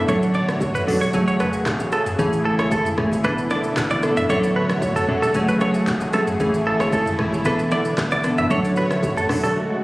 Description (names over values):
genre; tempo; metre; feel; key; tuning
afrobeats; 114 BPM; 4/4; straight; unclear; A4 = 440 Hz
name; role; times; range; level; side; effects
glassy digital keys; accompaniment; 0.0-9.5 s; E3 to A4; -21 LUFS; equal; chorus
lush unison pad; sustained chords; 0.0-9.8 s; C#3 to C#5; -25 LUFS; equal; chorus
direct-recorded clean electric guitar; riff; 0.0-9.5 s; A4 to E5; -24 LUFS; right 1 dB; digital delay
warm sub bass; bass; 0.0-9.5 s; D1 to A1; -33 LUFS; equal; none
deep house drum kit; drums; 0.1-9.6 s; handclaps, hi-hat, kick drum, rim click, shaker, toms; -27 LUFS; equal; none
congas and bongos; percussion; 0.1-9.6 s; none; -30 LUFS; equal; none
room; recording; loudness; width
light reverb, digital ambience; recorded on a phone in the room, studio reverb, compression; -18 LUFS; side -19 dB against mid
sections
0.0-9.8 A section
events
break 9.6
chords
0.1 Dmaj7; 1.1 F#madd9; 2.2 Amaj7; 3.2 E7sus4; 4.3 Dmaj7; 5.3 F#madd9; 6.4 Amaj7; 7.5 E7sus4; 8.5 Dmaj7